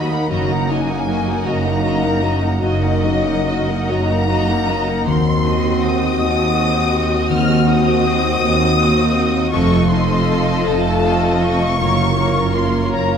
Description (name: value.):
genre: classical, slow romantic movement for symphony orchestra.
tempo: 53 BPM (dotted quarters).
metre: 12/8.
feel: rubato.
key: Eb minor.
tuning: A4 = 440 Hz.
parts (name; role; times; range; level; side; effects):
rich studio violin section; melody; 0.0-13.2 s; Eb5 to F6; -22 LUFS; left 3 dB; none.
warm studio violin section; second line; 0.0-13.2 s; Gb4 to Gb5; -25 LUFS; equal; none.
warm studio viola section; accompaniment; 0.0-13.2 s; Gb3 to Gb4; -24 LUFS; right 1 dB; none.
warm French horn section; sustained chords; 0.0-13.2 s; A3 to Gb4; -22 LUFS; left 4 dB; none.
concert harp; arpeggios; 0.0-13.2 s; F2 to Gb5; -23 LUFS; left 6 dB; none.
rich studio double bass section; bass; 0.0-13.2 s; F1 to Eb2; -21 LUFS; right 4 dB; none.
warm studio cello section; bass; 0.0-13.2 s; Eb2 to Gb2; -22 LUFS; right 4 dB; none.
room: moderate concert hall reverb, RT60 1.9 s.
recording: none.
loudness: -14 LUFS.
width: side -7 dB against mid.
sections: 0.0-13.2 A section.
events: none.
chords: 0.3 Ebm/Gb; 5.1 Cdim/Eb; 9.5 F7; 11.8 Gbmaj7.